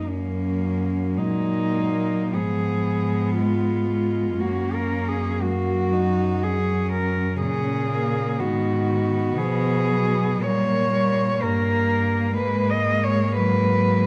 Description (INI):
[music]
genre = classical, lyrical piece for cello ensemble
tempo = 50-63 BPM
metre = 4/4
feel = rubato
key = F# major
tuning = A4 = 440 Hz
[part]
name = dark cello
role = melody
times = 0.0-14.1 s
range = C#4 to D#5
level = -27 LUFS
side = equal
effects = none
[part]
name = warm cello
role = second line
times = 0.0-14.1 s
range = G#3 to D#4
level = -33 LUFS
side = equal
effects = none
[part]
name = warm cello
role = accompaniment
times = 0.1-14.1 s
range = C#3 to A#3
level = -28 LUFS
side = equal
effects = none
[part]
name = rich cello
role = bass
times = 0.1-14.1 s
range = F#2 to B2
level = -27 LUFS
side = equal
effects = none
[sound]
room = wet recital hall reverb, RT60 1.4 s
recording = dark, warm production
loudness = -23 LUFS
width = mono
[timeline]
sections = 0.1-14.1 A section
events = none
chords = 0.1 F#; 2.3 Fdim/Ab; 4.4 F#; 8.4 G#m7; 10.4 Gdim/Bb; 12.4 G#m7